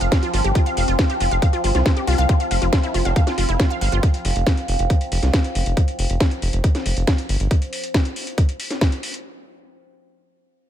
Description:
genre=psychedelic trance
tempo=138 BPM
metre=4/4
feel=straight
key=unclear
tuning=A4 = 440 Hz
part: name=overtone-sweeping drone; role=sustained chords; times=0.0-7.6 s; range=F3 to C4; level=-27 LUFS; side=right 1 dB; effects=chorus, built-in reverb, phaser, vintage 12-bit sampler grit, sidechain pumping
part: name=wide unison pluck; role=riff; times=0.0-4.0 s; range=E4 to F5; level=-25 LUFS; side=moving between left 4 dB and right 6 dB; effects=auto-pan, sidechain pumping, ping-pong delay
part: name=round analog bass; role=bass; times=0.0-7.5 s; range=F1 to C2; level=-20 LUFS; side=equal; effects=none
part: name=techno drum kit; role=drums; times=0.0-9.2 s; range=hi-hat, snare drum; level=-25 LUFS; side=equal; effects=none
part: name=electronic kick drum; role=drums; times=0.1-8.9 s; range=none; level=-18 LUFS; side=equal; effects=none
part: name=formant-sweep wobble bass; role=second line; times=3.1-3.2 s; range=C4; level=-37 LUFS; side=right 2 dB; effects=none
room=little or no reverb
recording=none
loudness=-17 LUFS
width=side -10 dB against mid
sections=0.0-9.2 A section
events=drop 0.0-9.2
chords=0.0 F5

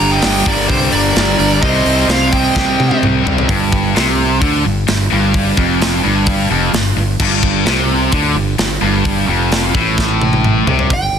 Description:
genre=hard rock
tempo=129 BPM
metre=4/4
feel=straight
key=G minor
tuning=A4 = 440 Hz
part: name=smooth overdriven lead guitar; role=melody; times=0.0-3.0, 10.9-11.2 s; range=C5 to Bb5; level=-19 LUFS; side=right 2 dB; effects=tape echo
part: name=octave-fuzz lead guitar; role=second line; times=0.0-3.0 s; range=G4 to Eb5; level=-24 LUFS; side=right 4 dB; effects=distortion
part: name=biting overdriven guitar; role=riff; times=0.0-10.9 s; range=F2 to C4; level=-19 LUFS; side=right 9 dB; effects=none
part: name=distorted electric guitar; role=riff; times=0.0-10.9 s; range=F2 to Eb4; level=-22 LUFS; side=left 1 dB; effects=distortion
part: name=high-gain distorted guitar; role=riff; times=0.0-10.9 s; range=F2 to C4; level=-18 LUFS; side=left 13 dB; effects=distortion
part: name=fingered electric bass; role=bass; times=0.0-11.2 s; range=F1 to C3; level=-19 LUFS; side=equal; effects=none
part: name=tight metal drum kit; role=drums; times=0.2-11.0 s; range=crash cymbal, hi-hat, kick drum, snare drum, toms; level=-17 LUFS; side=equal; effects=soft clipping on kick
room=light reverb, small room ambience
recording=dense, heavily limited modern master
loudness=-11 LUFS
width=side -8 dB against mid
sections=0.0-3.5 A section; 3.5-10.9 B section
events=drum fill 2.6-3.5, 10.0-10.9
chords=0.0 Gm; 1.6 Cm; 3.5 G5

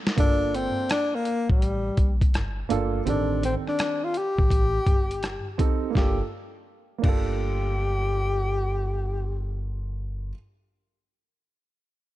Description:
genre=hip hop, jazz-hop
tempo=83 BPM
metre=4/4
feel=swing 65% on 16ths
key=G minor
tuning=A4 = 439 Hz
part: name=boom bap sampler-style drum kit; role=drums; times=0.1-7.3 s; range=crash cymbal, hi-hat, kick drum, rim click, snare drum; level=-23 LUFS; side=equal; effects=vintage 12-bit sampler grit
part: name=breathy tenor saxophone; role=melody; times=0.2-9.6 s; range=G3 to G4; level=-27 LUFS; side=left 2 dB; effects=none
part: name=dark upright piano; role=accompaniment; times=0.2-10.3 s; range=Eb3 to A4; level=-30 LUFS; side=right 9 dB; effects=none
part: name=upright bass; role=bass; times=0.2-10.3 s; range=G1 to Bb1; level=-29 LUFS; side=equal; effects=none
room=little or no reverb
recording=dark, warm production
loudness=-23 LUFS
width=side -15 dB against mid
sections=0.2-6.0 A section; 6.0-8.8 B section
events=drum fill 0.0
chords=0.2 Gm9; 3.1 Am7b5; 6.0 Gm9

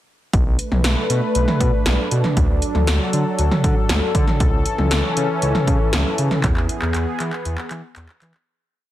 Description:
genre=synth-pop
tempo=118 BPM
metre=4/4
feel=straight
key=B dorian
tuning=A4 = 441 Hz
part: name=warm analog pad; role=sustained chords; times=0.3-8.5 s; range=E3 to B4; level=-22 LUFS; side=left 1 dB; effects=chorus
part: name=smooth synth bass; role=bass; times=0.3-8.3 s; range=B1 to E3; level=-21 LUFS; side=equal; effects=none
part: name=80s electronic pad drums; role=drums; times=0.3-8.5 s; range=handclaps, hi-hat, kick drum, snare drum, toms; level=-20 LUFS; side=equal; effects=gated reverb on snare and toms
room=light reverb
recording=dense, heavily limited modern master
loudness=-16 LUFS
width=side -13 dB against mid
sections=0.3-8.5 verse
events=fade-out 6.4-8.5; drum fill 6.4-8.5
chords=0.3 Bm7; 2.4 D; 4.4 A/C#; 6.4 E

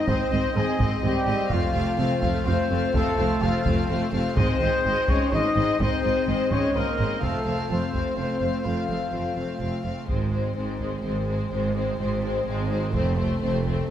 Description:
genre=cinematic, epic orchestral film score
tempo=126 BPM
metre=3/4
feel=straight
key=Ab major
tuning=A4 = 440 Hz
part: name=warm chamber violin section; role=melody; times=0.0-13.9 s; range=C5 to F5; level=-33 LUFS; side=left 4 dB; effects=none
part: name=rich chamber violin section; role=second line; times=0.0-13.9 s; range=C4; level=-33 LUFS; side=left 5 dB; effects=none
part: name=warm symphonic viola section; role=accompaniment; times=0.0-13.9 s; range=Ab3 to C4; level=-32 LUFS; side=right 1 dB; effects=none
part: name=mellow French horn section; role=sustained chords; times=0.0-13.9 s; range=F3 to C5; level=-30 LUFS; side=left 4 dB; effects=none
part: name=warm woodwind section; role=sustained chords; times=0.0-9.8 s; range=C4 to Eb5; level=-35 LUFS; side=left 1 dB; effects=none
part: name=dark trumpet section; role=stabs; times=0.0-9.8 s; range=F4 to Eb5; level=-28 LUFS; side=equal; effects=none
part: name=rich symphonic double bass section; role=bass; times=0.1-13.8 s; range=F1 to Ab1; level=-29 LUFS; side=right 2 dB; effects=none
part: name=warm studio cello section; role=bass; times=0.1-13.8 s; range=F2 to Ab2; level=-30 LUFS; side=right 2 dB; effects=none
part: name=taiko ensemble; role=drums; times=0.1-13.9 s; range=none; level=-29 LUFS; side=equal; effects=none
room=wet scoring stage reverb, RT60 1.7 s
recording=none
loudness=-22 LUFS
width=side -10 dB against mid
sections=0.0-10.1 A section; 10.1-13.9 B section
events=none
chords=0.0 Ab; 1.5 F; 4.4 Ab; 7.2 F; 10.1 Ab; 12.9 F

